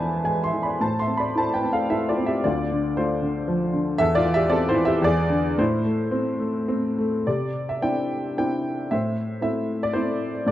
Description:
classical, lyrical solo piano; 101-117 BPM; 3/4; rubato; A minor, C major from 7.3 s; A4 = 440 Hz
warm upright piano; solo; 0.0-10.5 s; D2 to C6; -21 LUFS; equal
moderate recital hall reverb, RT60 1.4 s; dark, warm production; -21 LUFS; side -13 dB against mid
0.0-7.3 A section; 7.3-10.5 B section
0.0 E; 0.8 Am; 2.4 Dm; 4.0 Am/E; 5.0 E7; 5.6 Am; 7.3 Cadd9; 8.9 Am

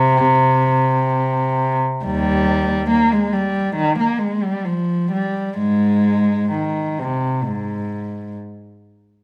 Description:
classical, baroque-style suite movement for unaccompanied cello; 64-71 BPM; 4/4; rubato; Ab major; A4 = 439 Hz
warm cello; solo; 0.0-8.4 s; Eb2 to Bb3; -19 LUFS; equal
moderate recital hall reverb, RT60 1.3 s; -19 LUFS; mono
0.0-9.2 A section

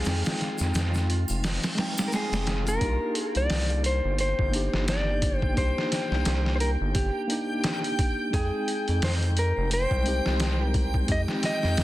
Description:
trip hop; 87 BPM; 4/4; swing 58% on 16ths; C minor; A4 = 443 Hz
mellow electric guitar; melody; 0.0-11.8 s; G4 to Eb5; -30 LUFS; left 1 dB; tape echo
mellow tine electric piano; accompaniment; 0.0-11.8 s; Ab3 to G5; -32 LUFS; equal; tremolo, tape echo
round analog bass; bass; 0.0-11.8 s; F1 to F2; -27 LUFS; equal
tube shaker and triangle; percussion; 0.0-2.8 s; -40 LUFS; equal
backwards swelling texture; texture; 0.0-11.8 s; F4 to G5; -36 LUFS; equal; built-in reverb
trip hop sampler-style drum kit; drums; 0.1-11.8 s; hi-hat, kick drum, snare drum; -28 LUFS; equal; vintage 12-bit sampler grit
digital ambience; dense, heavily limited modern master; -24 LUFS; side -16 dB against mid
0.0-2.8 A section; 2.8-11.8 B section
filter sweep on tine electric piano 0.0-2.8
0.0 Fm7; 2.8 Cm9; 8.3 Fm7

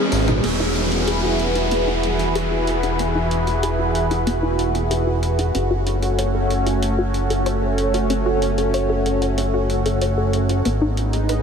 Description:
synthwave; 94 BPM; 4/4; straight; A4 = 440 Hz
lush unison pad; sustained chords; 0.0-11.4 s; D#3 to B4; -21 LUFS; equal; chorus, phaser
wide unison pluck; arpeggios; 0.0-11.4 s; B3 to C#5; -26 LUFS; left 2 dB; analog delay
chorused synth bass; bass; 0.1-11.4 s; E1 to G#1; -23 LUFS; equal; tube saturation
gated 80s digital drum machine; drums; 0.1-11.4 s; crash cymbal, hi-hat, tambourine, toms; -27 LUFS; equal; gated reverb
downlifter; sound effects; 0.4-5.5 s; -30 LUFS; equal
wet huge ambient reverb, RT60 7.4 s; dreamy mix soaked in reverb; -18 LUFS; side -6 dB against mid
0.4-11.4 A section
drum fill 0.0-0.4; filter sweep on synth arpeggio sound 0.4-11.4
0.4 Eadd9; 5.5 F#m; 10.7 G#m

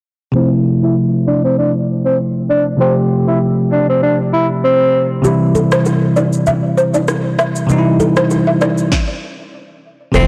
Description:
afrobeats; 98 BPM; 4/4; swing 55% on 16ths; C major; A4 = 440 Hz
bell-like tine electric piano; accompaniment; 0.3-10.3 s; C3 to G4; -16 LUFS; equal; low-pass filter
breathy tenor saxophone; melody; 0.4-5.1, 10.2-10.3 s; C4 to E4; -17 LUFS; equal; low-pass filter
balafon; riff; 5.2-10.2 s; G4 to E5; -20 LUFS; equal; low-pass filter, delay
afro-pop drum kit; drums; 5.2-10.3 s; kick drum, rim click, shaker, snare drum; -24 LUFS; equal; overdrive
congas and bongos; percussion; 5.2-10.3 s; -26 LUFS; equal
sub bass with octave; bass; 10.1-10.3 s; F1; -15 LUFS; equal
moderate lush hall reverb, RT60 2.2 s; blown-out, overdriven recording, overdrive; -14 LUFS; mono
0.3-10.1 A section
filter sweep 0.3-10.1; stop 8.9-10.1
0.3 Fmaj7; 5.2 C

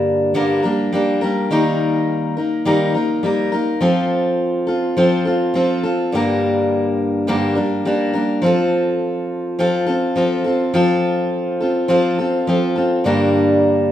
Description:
country; 104 BPM; 4/4; straight; A4 = 441 Hz
picked steel-string acoustic guitar; solo; 0.0-13.9 s; G2 to Bb4; -15 LUFS; equal
moderate large studio reverb, RT60 1.2 s; minimal, uncompressed stereo recording; -15 LUFS; side -11 dB against mid
0.0-13.9 A section
0.0 Gm; 1.5 Eb; 3.8 F; 6.1 Gm; 8.4 F; 13.1 Gm

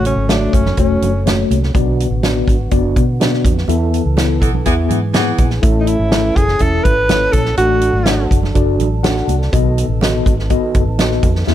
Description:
uptempo 1960s-style soul; 123 BPM; 4/4; straight; A4 = 441 Hz
breathy tenor saxophone; melody; 0.0-1.2, 5.8-8.3 s; C#4 to B4; -17 LUFS; right 1 dB
mellow tine electric piano; accompaniment; 0.0-11.5 s; B2 to F#5; -19 LUFS; left 3 dB; medium stereo tremolo
tonewheel organ; sustained chords; 0.0-11.5 s; D3 to A4; -26 LUFS; right 2 dB; slow rotary speaker, overdrive
vintage muted fingered electric bass; bass; 0.0-11.5 s; E1 to B2; -18 LUFS; equal
natural country drum kit; drums; 0.0-11.5 s; hi-hat, kick drum, snare drum; -16 LUFS; equal
congas; percussion; 0.1-11.5 s; -27 LUFS; right 10 dB
edgy saxophone section; second line; 4.4-5.5 s; E3 to A4; -22 LUFS; right 1 dB
little or no reverb; -12 LUFS; side -12 dB against mid
0.0-11.5 A section
band accent 3.7-5.6
0.0 F#m; 1.7 Bm; 3.7 Esus4; 4.7 E; 5.6 A; 7.6 D; 9.5 B7

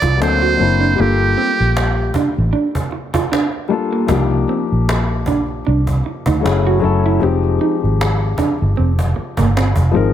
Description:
R&B, neo-soul; 77 BPM; 4/4; swing 56% on 16ths; A4 = 438 Hz
trumpet with metal mute; melody; 0.0-2.2 s; G4 to D5; -18 LUFS; right 5 dB; slapback echo
electric guitar through a small old amp; second line; 0.0-10.0 s; Bb3 to F#4; -21 LUFS; right 7 dB; spring reverb
warm concert grand piano; accompaniment; 0.0-10.1 s; F3 to Bb4; -19 LUFS; left 7 dB
vintage muted fingered electric bass; bass; 0.0-10.1 s; F1 to D2; -16 LUFS; equal
cajon; drums; 0.0-10.0 s; -22 LUFS; right 1 dB
small room ambience; -14 LUFS; side -10 dB against mid
0.0-10.1 A section
0.2 D7b13; 1.0 Gm9; 4.1 Cm11; 6.4 Gbm9; 7.2 Fm9

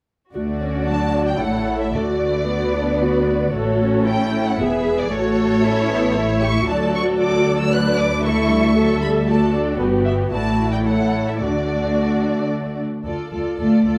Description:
quick classical-period movement for string orchestra; 114 BPM; 3/4; straight; D major; A4 = 441 Hz
dark studio violin section; second line; 0.3-14.0 s; F#4 to E5; -27 LUFS; equal
warm studio viola section; accompaniment; 0.3-14.0 s; F#3 to A4; -23 LUFS; equal
rich studio double bass section; bass; 0.3-13.9 s; E1 to D2; -27 LUFS; equal
warm studio cello section; bass; 0.3-14.0 s; D2 to A3; -26 LUFS; equal
rich studio violin section; melody; 0.9-14.0 s; C#5 to F#6; -29 LUFS; equal
moderate concert hall reverb, RT60 1.9 s; close, detailed microphones; -19 LUFS; mono
0.3-13.1 A section
0.3 D; 1.4 A; 1.9 D; 3.5 A; 4.6 E; 5.1 A; 6.7 D; 8.2 A7/D; 9.3 D; 9.8 Em/G (rootless); 10.3 D/A; 11.4 D; 13.1 Dm

